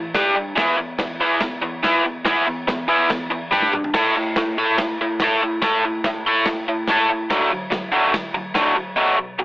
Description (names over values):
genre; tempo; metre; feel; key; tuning
garage rock duo or trio; 143 BPM; 4/4; straight; unclear; A4 = 445 Hz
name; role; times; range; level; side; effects
overdriven electric guitar; riff; 0.0-9.4 s; A2 to A4; -18 LUFS; equal; none
crunchy breakbeat drum kit; drums; 0.1-8.7 s; crash cymbal, kick drum, snare drum, toms; -26 LUFS; equal; none
room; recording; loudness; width
light reverb; telephone sound; -17 LUFS; side -19 dB against mid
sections
0.0-9.4 A section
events
drum fill 3.5-3.9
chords
0.2 G5; 0.6 E5; 3.5 G5; 3.9 A5; 7.3 D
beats
0.16 | 0.58 1.00 1.43 1.85 | 2.27 2.69 3.11 3.53 | 3.95 4.37 4.79 5.21 | 5.63 6.05 6.47 6.88 | 7.30 7.72 8.14 8.56 | 8.98 9.40